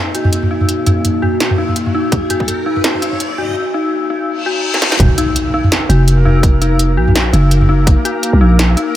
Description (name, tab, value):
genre	half-time drum and bass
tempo	167 BPM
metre	4/4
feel	swing 56% on 16ths, half-time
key	Eb minor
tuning	A4 = 443 Hz
part	deep dark ambient pad	sustained chords	0.0-3.6 s	Bb3 to Eb5	-23 LUFS	left 1 dB	chorus, built-in reverb, sidechain pumping
part	dark detuned synth bell	arpeggios	0.0-9.0 s	Eb4 to Gb4	-18 LUFS	left 2 dB	chorus, tremolo, dub echo
part	riser, reverse cymbal and impact	sound effects	1.0-6.4 s	none	-24 LUFS	left 1 dB	none
part	industrial drum kit	drums	0.1-8.9 s	hi-hat, snare drum, toms	-17 LUFS	equal	none
part	electronic kick drum	drums	2.1-2.5, 5.0-8.0 s	none	-12 LUFS	equal	overdrive
part	growling 808-style bass	bass	5.0-8.8 s	Eb1 to C2	-10 LUFS	equal	none
part	backwards swelling texture	texture	5.5-9.0 s	Bb3 to Bb4	-23 LUFS	right 1 dB	built-in reverb
room	light reverb, digital ambience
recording	high-pass filter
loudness	-11 LUFS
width	side -13 dB against mid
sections	0.0-5.0 A section; 5.0-9.0 B section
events	build-up 0.0-5.0; filter sweep 0.0-5.0; riser 1.0-3.6; reverse cymbal 4.4-5.0; drum fill 4.7; drop 5.0-9.0; impact 5.0-6.4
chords	0.0 Ebm